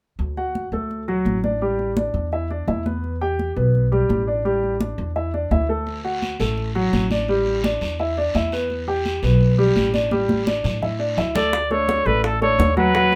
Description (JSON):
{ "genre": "latin, Cuban son and guajira", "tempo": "169 BPM", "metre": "4/4", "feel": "straight", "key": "D major", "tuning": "A4 = 441 Hz", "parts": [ { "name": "upright bass", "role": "bass", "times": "0.2-13.2 s", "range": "A1 to A2", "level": "-26 LUFS", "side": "equal", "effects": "none" }, { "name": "congas", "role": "percussion", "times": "0.2-13.2 s", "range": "none", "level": "-29 LUFS", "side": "equal", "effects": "none" }, { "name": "warm grand piano", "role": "arpeggios", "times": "0.4-13.2 s", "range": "F#3 to G5", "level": "-24 LUFS", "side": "equal", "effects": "none" }, { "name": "guiro", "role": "percussion", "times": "5.9-11.5 s", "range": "none", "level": "-35 LUFS", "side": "equal", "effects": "none" }, { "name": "breathy trumpet", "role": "melody", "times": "11.4-13.2 s", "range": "A4 to D5", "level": "-22 LUFS", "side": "equal", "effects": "none" }, { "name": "bongos", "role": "percussion", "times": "11.5-13.2 s", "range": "none", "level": "-31 LUFS", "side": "equal", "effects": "none" } ], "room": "moderate studio ambience, RT60 0.5 s", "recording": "none", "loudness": "-21 LUFS", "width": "mono", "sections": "0.2-11.5 A section; 11.5-13.2 B section", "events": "drum fill 10.1-11.5", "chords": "0.2 D; 1.6 A7sus4; 5.9 D; 7.3 A7sus4; 11.5 D" }